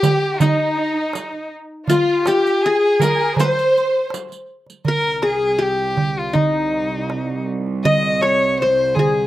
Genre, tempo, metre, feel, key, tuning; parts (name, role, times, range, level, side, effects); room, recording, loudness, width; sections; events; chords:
Turkish makam ensemble; 81 BPM; 4/4; straight; C makam kurdi; A4 = 441 Hz
qanun; melody; 0.0-9.3 s; Eb4 to Eb5; -20 LUFS; left 2 dB
rich studio violin section; second line; 0.0-4.1 s; Eb4 to C5; -23 LUFS; right 2 dB; slapback echo
rich violin; second line; 0.0-9.3 s; Eb4 to Eb5; -21 LUFS; left 1 dB; slapback echo
darbuka; percussion; 0.0-9.1 s; -21 LUFS; right 3 dB
riq; percussion; 0.0-4.8 s; -28 LUFS; right 6 dB
dark chamber cello section; drone; 4.9-9.3 s; C2; -26 LUFS; right 3 dB
little or no reverb; recorded outdoors, with no room sound; -16 LUFS; side -14 dB against mid
0.0-4.9 A section; 4.9-9.3 B section